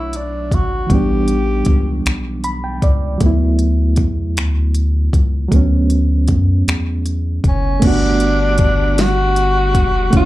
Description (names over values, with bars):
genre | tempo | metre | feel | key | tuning
slow six-eight R&B | 52 BPM (dotted quarters) | 6/8 | straight | unclear | A4 = 440 Hz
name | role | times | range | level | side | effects
breathy tenor saxophone | melody | 0.0-2.1, 7.5-10.3 s | C#4 to G4 | -19 LUFS | left 1 dB | plate reverb, slapback echo
reed electric piano | accompaniment | 0.0-10.3 s | E3 to B5 | -20 LUFS | right 2 dB | tremolo, slapback echo
round analog bass | bass | 0.0-10.3 s | E#1 to F#2 | -17 LUFS | equal | none
smooth R&B drum kit | drums | 0.1-10.3 s | crash cymbal, finger snaps, hi-hat, kick drum, snare drum | -16 LUFS | equal | none
tonewheel organ | sustained chords | 7.8-10.3 s | G3 to E6 | -27 LUFS | left 1 dB | chorus vibrato, fast rotary speaker, plate reverb
room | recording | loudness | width
little or no reverb | live gig heard through the venue's PA, club reverb | -13 LUFS | side -16 dB against mid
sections
0.0-7.8 A section; 7.8-10.3 B section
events
reed electric piano fill 2.1-3.2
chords
0.0 Bm9; 0.9 A9sus4; 3.2 D69; 7.8 Gmaj7